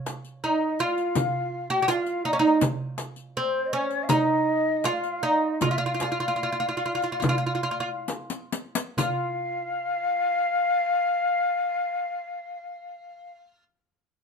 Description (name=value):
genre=Arabic maqam ensemble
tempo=66-82 BPM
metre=4/4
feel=straight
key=F maqam bayati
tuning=A4 = 441 Hz
part: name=darbuka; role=percussion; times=0.1-9.4 s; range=none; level=-32 LUFS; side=right 3 dB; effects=none
part: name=frame drum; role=percussion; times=0.1-9.4 s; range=none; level=-30 LUFS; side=left 3 dB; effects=none
part: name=riq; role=percussion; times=0.1-9.4 s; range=none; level=-32 LUFS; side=left 6 dB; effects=none
part: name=oud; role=melody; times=0.4-13.6 s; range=C4 to Gb4+50c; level=-25 LUFS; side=right 2 dB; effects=none
part: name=breathy ney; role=second line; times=0.4-13.4 s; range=C5 to Gb5+50c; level=-27 LUFS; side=left 3 dB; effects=none
room=moderate studio reverb, RT60 0.6 s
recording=minimal, uncompressed stereo recording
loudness=-23 LUFS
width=side -5 dB against mid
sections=0.0-9.0 A section; 9.0-12.6 B section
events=slowing down 2.6-9.0; drum fill 8.1-9.0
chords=none